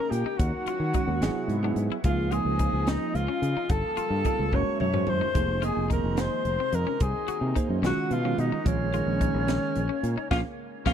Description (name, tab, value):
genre	electric jazz fusion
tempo	73 BPM (dotted quarters)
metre	6/8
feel	straight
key	unclear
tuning	A4 = 441 Hz
part	breathy alto saxophone	melody	0.0-10.9 s	Db4 to Db5	-30 LUFS	left 4 dB	tape echo
part	bright silver concert flute	second line	0.0-10.9 s	Db5 to Db6	-36 LUFS	right 11 dB	tape echo
part	lush unison pad	sustained chords	0.0-10.9 s	C3 to Gb4	-38 LUFS	left 1 dB	chorus, phaser
part	clean electric guitar	stabs	0.0-10.9 s	Bb3 to Gb4	-36 LUFS	left 15 dB	lush chorus
part	fingered electric bass	bass	0.1-10.9 s	F1 to Eb3	-28 LUFS	equal	none
part	crisp fusion drum kit	drums	0.1-10.9 s	hi-hat, kick drum, snare drum, toms	-29 LUFS	equal	none
part	bell-like tine electric piano	accompaniment	0.9-10.9 s	Eb3 to Eb5	-31 LUFS	right 9 dB	fast stereo tremolo
room	little or no reverb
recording	none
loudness	-24 LUFS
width	side -9 dB against mid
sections	0.0-10.9 A section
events	drum fill 4.5-5.4, 10.3-10.9; band accent 10.3-10.9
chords	0.4 Ebm7; 1.2 Ab7alt; 2.0 Dbmaj9; 3.7 Gm7b5; 4.5 Gb9; 5.4 Fm7; 7.0 Cm7b5; 7.8 B69; 8.7 Bbm7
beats	| 0.40 1.22 | 2.05 2.88 | 3.70 4.53 | 5.36 6.18 | 7.01 7.83 | 8.66 9.49 | 10.31